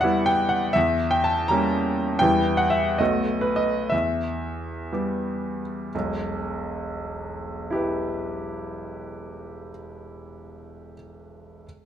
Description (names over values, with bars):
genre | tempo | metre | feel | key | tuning
classical, romantic character piece for solo piano | 57-84 BPM (dotted quarters) | 6/8 | rubato | E minor | A4 = 440 Hz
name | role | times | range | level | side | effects
bright baby grand piano | solo | 0.0-11.7 s | E1 to Bb5 | -23 LUFS | equal | none
room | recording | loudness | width
moderate recital hall reverb, RT60 1.4 s | none | -22 LUFS | side -10 dB against mid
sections
0.0-5.9 A section; 5.9-9.5 B section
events
slowing down 1.5-5.9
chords
0.0 Em; 0.8 Edim7; 2.2 Em; 3.0 B7; 3.9 Em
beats
0.02 | 0.76 1.50 | 2.22 3.00 | 3.92 4.92 | 5.93 6.81 | 7.70 8.61